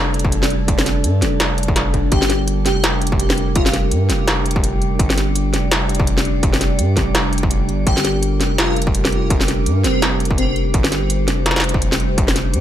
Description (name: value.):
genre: half-time drum and bass.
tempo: 167 BPM.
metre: 4/4.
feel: swing 58% on 16ths, half-time.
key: G minor.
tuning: A4 = 436 Hz.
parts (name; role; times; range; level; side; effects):
dark analog pad; sustained chords; 0.0-12.6 s; G3 to D5; -24 LUFS; right 1 dB; chorus, vintage 12-bit sampler grit, sidechain pumping.
saturated sub bass; bass; 0.0-12.6 s; F1 to G2; -20 LUFS; equal; none.
metallic inharmonic drone; texture; 0.1-12.6 s; D4 to G4; -29 LUFS; right 2 dB; chorus, built-in reverb.
industrial drum kit; drums; 0.1-12.6 s; hi-hat, snare drum; -20 LUFS; equal; none.
electronic kick drum; drums; 0.2-12.3 s; none; -20 LUFS; equal; distortion.
airy dreamy lead; melody; 2.1-3.7, 7.9-10.5 s; C4 to G4; -24 LUFS; left 1 dB; chorus, digital delay.
room: digital ambience.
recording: none.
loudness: -15 LUFS.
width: side -11 dB against mid.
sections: 0.0-12.6 A section.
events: none.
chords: 0.0 Gm.